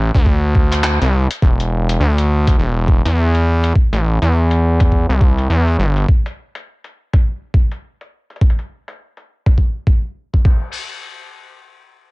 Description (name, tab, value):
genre	glitch hop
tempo	103 BPM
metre	4/4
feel	swing 61% on 16ths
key	unclear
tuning	A4 = 442 Hz
part	gritty driven synth bass	bass	0.0-6.1 s	E1 to E2	-14 LUFS	equal	none
part	electronic kick drum	drums	0.1-10.6 s	none	-13 LUFS	equal	none
part	boom bap sampler-style drum kit	drums	0.7-10.6 s	crash cymbal, handclaps, hi-hat	-26 LUFS	left 1 dB	low-pass filter on snare, low-pass filter on hats, low-pass filter on cymbals, low-pass filter on room
room	little or no reverb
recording	nothing above 10.5 kHz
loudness	-13 LUFS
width	side -25 dB against mid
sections	0.0-10.7 A section; 10.7-12.1 B section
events	filter sweep on drum 0.0-10.7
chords	none